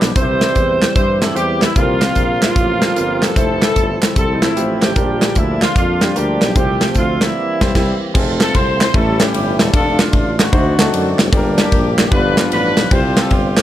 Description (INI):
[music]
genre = uptempo gospel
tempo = 150 BPM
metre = 4/4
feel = swing 65% on 8ths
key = F major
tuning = A4 = 441 Hz
[part]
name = mellow horn section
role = melody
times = 0.0-13.6 s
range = G3 to C5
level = -21 LUFS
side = left 2 dB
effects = none
[part]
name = clear concert grand piano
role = accompaniment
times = 0.0-13.5 s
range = G2 to C5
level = -21 LUFS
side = left 1 dB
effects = none
[part]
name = dark French horn section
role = sustained chords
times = 0.0-8.1 s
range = none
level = barely audible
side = none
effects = none
[part]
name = tonewheel organ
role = sustained chords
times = 0.0-13.6 s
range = D3 to D5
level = -25 LUFS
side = right 2 dB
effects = none
[part]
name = mellow tuba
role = bass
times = 0.0-13.6 s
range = E1 to G2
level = -21 LUFS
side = equal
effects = none
[part]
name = modern studio drum kit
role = drums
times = 0.0-13.6 s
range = crash cymbal, hi-hat, kick drum, ride cymbal, snare drum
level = -16 LUFS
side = equal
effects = none
[part]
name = group handclap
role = percussion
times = 0.0-13.6 s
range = none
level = -25 LUFS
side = right 4 dB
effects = none
[part]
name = raspy alto saxophone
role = melody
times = 0.2-8.0 s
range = Eb4 to C5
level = -21 LUFS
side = right 3 dB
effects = none
[sound]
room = light reverb, small room ambience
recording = none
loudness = -12 LUFS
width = side -12 dB against mid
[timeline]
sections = 0.0-8.2 A section; 8.2-13.6 B section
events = band accent 7.4-8.2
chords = 0.2 C; 1.8 C7sus4; 3.4 Fmaj7; 5.0 Bb6; 6.6 F/C; 7.4 C7; 8.2 F; 8.9 A7; 9.7 Dm/F; 10.5 D7b9; 11.3 Gm; 12.1 G7; 12.9 Csus4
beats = | 0.15 0.56 0.96 1.36 | 1.76 2.16 2.56 2.96 | 3.36 3.76 4.16 4.56 | 4.96 5.36 5.76 6.16 | 6.56 6.96 7.36 7.75 | 8.15 8.55 8.95 9.34 | 9.74 10.13 10.53 10.93 | 11.32 11.72 12.12 12.51 | 12.91 13.31